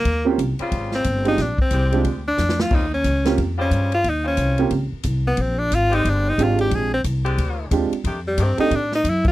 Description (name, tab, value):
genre	jazz, big band swing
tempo	180 BPM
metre	4/4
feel	swing 62% on 8ths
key	Bb mixolydian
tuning	A4 = 439 Hz
part	edgy tenor saxophone	melody	0.0-9.3 s	G3 to Ab4	-21 LUFS	left 1 dB	none
part	upright bass	bass	0.0-9.3 s	G1 to A2	-22 LUFS	equal	none
part	swinging big-band drum kit	drums	0.1-9.3 s	crash cymbal, hi-hat, kick drum, ride cymbal, snare drum	-25 LUFS	equal	none
part	warm concert grand piano	accompaniment	0.2-8.7 s	Ab3 to G4	-21 LUFS	right 6 dB	none
part	bright saxophone section	sustained chords	0.6-8.5 s	Db3 to C5	-28 LUFS	left 2 dB	none
room	little or no reverb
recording	dry, close 1970s-style studio recording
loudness	-18 LUFS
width	side -16 dB against mid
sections	0.0-9.3 A section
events	tenor saxophone solo 0.0-9.3; drum fill 2.4-2.7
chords	0.1 Eb13; 1.4 Bb13; 2.7 Eb13; 5.4 Bb13; 8.0 F13